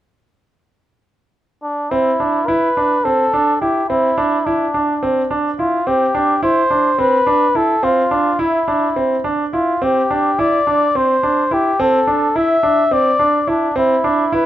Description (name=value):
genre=contemporary instrumental, chamber music in an uneven meter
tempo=213 BPM (eighths)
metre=7/8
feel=straight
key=unclear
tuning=A4 = 440 Hz
part: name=trumpet with cup mute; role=melody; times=1.6-14.5 s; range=D4 to E5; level=-16 LUFS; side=left 1 dB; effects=none
part: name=bright concert grand piano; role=arpeggios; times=1.9-14.5 s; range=C4 to E4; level=-17 LUFS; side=right 2 dB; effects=none
room=light reverb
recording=close, detailed microphones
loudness=-14 LUFS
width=side -12 dB against mid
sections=0.0-1.9 A section; 1.9-14.5 B section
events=none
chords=0.0 N.C.; 1.9 Cadd9